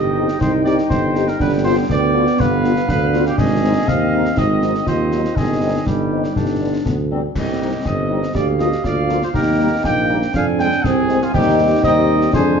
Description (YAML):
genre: military-style march for wind band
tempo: 121 BPM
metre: 2/4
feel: straight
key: C minor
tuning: A4 = 440 Hz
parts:
  - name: warm cornet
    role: melody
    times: 0.0-12.6 s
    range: F4 to G5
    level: -22 LUFS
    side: right 2 dB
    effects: none
  - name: mellow euphonium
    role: second line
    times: 0.0-12.6 s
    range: B3 to Ab4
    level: -21 LUFS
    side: right 2 dB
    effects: none
  - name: warm woodwind section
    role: second line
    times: 0.0-12.6 s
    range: G3 to Ab5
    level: -24 LUFS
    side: left 3 dB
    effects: none
  - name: warm tuba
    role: bass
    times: 0.0-12.6 s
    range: G1 to F2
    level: -20 LUFS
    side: right 3 dB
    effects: none
  - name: mellow French horn section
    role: accompaniment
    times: 0.2-12.6 s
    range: F3 to G4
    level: -23 LUFS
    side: left 6 dB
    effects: none
  - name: concert snare drum, concert bass drum and clash cymbals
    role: drums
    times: 0.3-12.5 s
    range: none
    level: -23 LUFS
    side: left 2 dB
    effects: none
room: moderate large studio reverb, RT60 1.2 s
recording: dark, warm production, nothing above 7.5 kHz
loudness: -15 LUFS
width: side -6 dB against mid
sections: 0.0-12.6 A section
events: none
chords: 0.0 Cm; 1.4 G7; 3.4 Ab; 4.4 Ab7; 5.4 Cm/G; 6.4 G; 7.4 Cm; 8.4 Bb/D; 9.3 Eb; 10.3 Fm; 11.3 Cm/Eb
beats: | 0.41 0.90 | 1.40 1.90 | 2.39 2.89 | 3.38 3.88 | 4.38 4.87 | 5.37 5.87 | 6.36 6.86 | 7.36 7.85 | 8.35 8.85 | 9.35 9.84 | 10.34 10.84 | 11.33 11.83 | 12.33